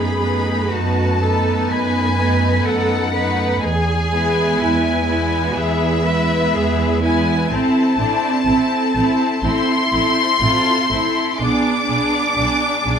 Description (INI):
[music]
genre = classical, slow romantic movement for string orchestra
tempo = 62 BPM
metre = 4/4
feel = rubato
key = A minor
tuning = A4 = 440 Hz
[part]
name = rich symphonic violin section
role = melody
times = 0.0-13.0 s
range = E5 to D6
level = -20 LUFS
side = left 2 dB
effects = none
[part]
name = clear symphonic violin section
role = second line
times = 0.0-13.0 s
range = D4 to B4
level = -24 LUFS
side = left 4 dB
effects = none
[part]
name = clear symphonic viola section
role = accompaniment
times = 0.0-13.0 s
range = G#3 to D4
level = -21 LUFS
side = right 3 dB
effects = none
[part]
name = clear chamber cello section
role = bass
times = 0.0-13.0 s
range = C4 to B4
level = -23 LUFS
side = right 1 dB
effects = none
[part]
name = rich studio double bass section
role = bass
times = 0.0-12.9 s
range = A1 to F#2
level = -22 LUFS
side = right 2 dB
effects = none
[sound]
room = moderate scoring stage reverb, RT60 1.9 s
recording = close, detailed microphones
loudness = -15 LUFS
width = side -7 dB against mid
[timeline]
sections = 0.0-13.0 A section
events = none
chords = 0.0 B7/F#; 3.6 E; 7.5 Am; 11.4 G#dim/B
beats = 0.72 1.70 2.65 | 3.62 4.60 5.55 6.54 | 7.51 8.47 9.44 10.41 | 11.39 12.36